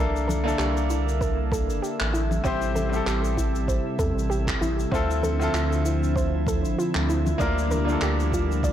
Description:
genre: sunset chillout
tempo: 97 BPM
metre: 4/4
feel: swing 56% on 16ths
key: unclear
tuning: A4 = 440 Hz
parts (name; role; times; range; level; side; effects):
- bright baby grand piano; accompaniment; 0.0-8.7 s; Bb3 to C5; -29 LUFS; moving between left 4 dB and right 5 dB; auto-pan, vintage 12-bit sampler grit, digital delay
- lush unison pad; sustained chords; 0.0-8.7 s; C3 to E5; -30 LUFS; left 1 dB; chorus
- soft round pluck; arpeggios; 0.0-8.7 s; E4 to D5; -31 LUFS; right 2 dB; chorus, cassette tape, digital delay
- round analog bass; bass; 0.0-8.7 s; G1 to E2; -26 LUFS; equal; tube saturation
- drifting glass-harmonics texture; texture; 0.4-8.7 s; E4 to E5; -36 LUFS; right 4 dB; chorus, built-in reverb
- cabasa and handclaps; drums; 0.2-8.7 s; none; -34 LUFS; equal; soft clipping on snare
- congas; percussion; 0.3-7.9 s; none; -33 LUFS; left 2 dB; none
- electronic kick drum; drums; 1.2-8.7 s; none; -28 LUFS; equal; none
room: light reverb, small room ambience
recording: blown-out, overdriven recording, overdrive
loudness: -22 LUFS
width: side -10 dB against mid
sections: 0.0-8.7 A section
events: none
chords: 0.0 C13; 2.1 Am7; 4.9 Dm9; 7.4 Gm7/D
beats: 0.60 1.22 1.83 | 2.45 3.07 3.69 4.31 | 4.93 5.55 6.17 6.78 | 7.40 8.02 8.64

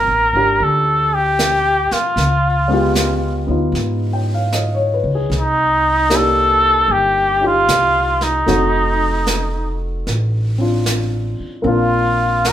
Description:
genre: jazz ballad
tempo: 76 BPM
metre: 4/4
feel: swing 67% on 8ths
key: unclear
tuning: A4 = 440 Hz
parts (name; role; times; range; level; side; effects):
- trumpet with cup mute; melody; 0.0-12.5 s; Eb4 to Bb4; -15 LUFS; equal; none
- warm grand piano; accompaniment; 0.0-12.5 s; G#3 to G5; -21 LUFS; left 1 dB; none
- upright bass; bass; 0.0-12.5 s; F1 to G#2; -20 LUFS; equal; none
- jazz brush drum kit; drums; 0.6-12.5 s; brushed snare drum, hi-hat, snare drum; -24 LUFS; right 2 dB; none
room: moderate studio reverb, RT60 0.5 s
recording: band playing live in one room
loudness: -14 LUFS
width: side -11 dB against mid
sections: 0.0-12.5 A section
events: none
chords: 0.0 Gm9; 2.2 C#7#11; 5.3 Cm9; 8.5 F7b9; 11.6 Bbadd9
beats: 0.61 1.39 | 2.18 2.96 3.75 4.53 | 5.32 6.10 6.89 7.68 | 8.47 9.26 10.05 10.85 | 11.64 12.43

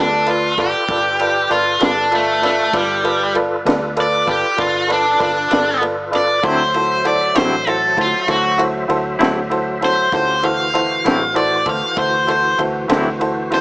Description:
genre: slow blues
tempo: 65 BPM (dotted quarters)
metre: 12/8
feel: straight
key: unclear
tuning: A4 = 440 Hz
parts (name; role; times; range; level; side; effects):
- overdriven electric guitar; melody; 0.0-13.6 s; G3 to F5; -16 LUFS; equal; none
- bright upright piano; accompaniment; 0.0-13.6 s; E4 to D5; -20 LUFS; right 1 dB; none
- tonewheel organ; sustained chords; 0.0-13.6 s; E3 to E5; -25 LUFS; equal; slow rotary speaker, overdrive, chorus vibrato
- vintage muted fingered electric bass; bass; 0.0-13.6 s; G1 to D2; -31 LUFS; equal; none
- compact cocktail drum kit; drums; 0.3-13.6 s; kick drum, ride cymbal, snare drum; -25 LUFS; equal; none
- clean electric guitar; accompaniment; 6.4-13.1 s; D3 to E4; -19 LUFS; left 1 dB; tremolo
room: light reverb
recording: small speaker sound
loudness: -14 LUFS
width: side -23 dB against mid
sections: 0.0-13.6 A section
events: overdriven electric guitar solo 0.0-13.6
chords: 0.0 G9; 6.4 D9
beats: 0.90 1.82 | 2.74 3.67 4.59 5.52 | 6.44 7.37 8.29 9.21 | 10.14 11.06 11.98 12.90

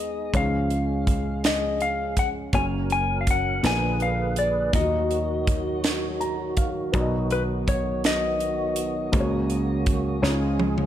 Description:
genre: slow gospel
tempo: 54 BPM (dotted quarters)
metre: 6/8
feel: straight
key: F# major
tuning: A4 = 441 Hz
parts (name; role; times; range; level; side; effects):
- clean lap steel guitar; melody; 0.0-10.6 s; B4 to G#5; -27 LUFS; left 3 dB; none
- warm concert grand piano; accompaniment; 0.0-10.9 s; A#2 to A#5; -30 LUFS; left 2 dB; none
- mellow French horn section; sustained chords; 0.0-10.9 s; E#3 to B4; -34 LUFS; equal; stereo widening
- dry thumbed slap bass; bass; 0.0-10.9 s; F#1 to D#2; -28 LUFS; right 1 dB; none
- crisp fusion drum kit; drums; 0.3-10.9 s; hi-hat, kick drum, snare drum, toms; -26 LUFS; right 1 dB; none
- percussive tonewheel organ; sustained chords; 2.5-10.9 s; C#3 to B4; -31 LUFS; right 5 dB; slow rotary speaker, chorus vibrato
room: light reverb, small room reverb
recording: none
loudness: -22 LUFS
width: side -11 dB against mid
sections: 0.0-10.9 A section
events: grand piano fill 5.8-6.9; drum fill 10.2-10.9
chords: 0.3 C#; 2.5 F#; 3.6 A#7b9; 4.7 D#m; 6.9 B; 9.1 F#/C#; 10.2 C#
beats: | 0.34 1.44 | 2.54 3.64 | 4.74 5.84 | 6.94 8.04 | 9.14 10.23

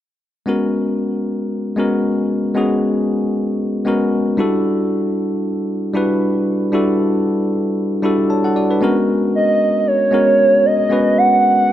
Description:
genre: amapiano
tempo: 115 BPM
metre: 4/4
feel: swing 55% on 16ths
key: G# minor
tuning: A4 = 440 Hz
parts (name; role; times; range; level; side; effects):
- bell-like tine electric piano; accompaniment; 0.5-11.7 s; G3 to A5; -16 LUFS; left 1 dB; none
- hollow clarinet-like synth lead; melody; 9.4-11.7 s; C#5 to F#5; -13 LUFS; right 2 dB; chorus, ping-pong delay
room: light reverb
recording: none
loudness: -14 LUFS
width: side -12 dB against mid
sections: 0.5-8.8 A section; 8.8-11.7 B section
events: drop 8.8-11.7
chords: 0.5 G#m11; 4.4 Em11; 8.8 G#m11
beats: | 0.47 0.99 1.52 2.04 | 2.56 3.08 3.60 4.12 | 4.65 5.17 5.69 6.21 | 6.73 7.25 7.78 8.30 | 8.82 9.34 9.86 10.39 | 10.91 11.43

